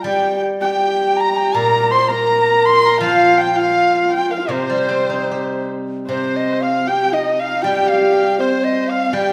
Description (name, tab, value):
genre	chinese traditional, Chinese chamber ensemble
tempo	80 BPM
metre	2/4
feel	rubato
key	C yu mode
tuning	A4 = 441 Hz
part	hollow large dizi	melody	0.0-9.3 s	Eb4 to C6	-21 LUFS	equal	none
part	warm erhu	second line	0.0-9.3 s	C5 to C6	-23 LUFS	equal	none
part	steel-string zither	accompaniment	0.0-9.3 s	Bb2 to G4	-26 LUFS	equal	none
part	dark horsehead fiddle	second line	0.1-9.3 s	C4 to C5	-21 LUFS	equal	none
room	wet recital hall reverb, RT60 1.4 s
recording	none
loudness	-16 LUFS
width	mono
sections	0.0-6.1 A section; 6.1-9.3 B section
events	none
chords	none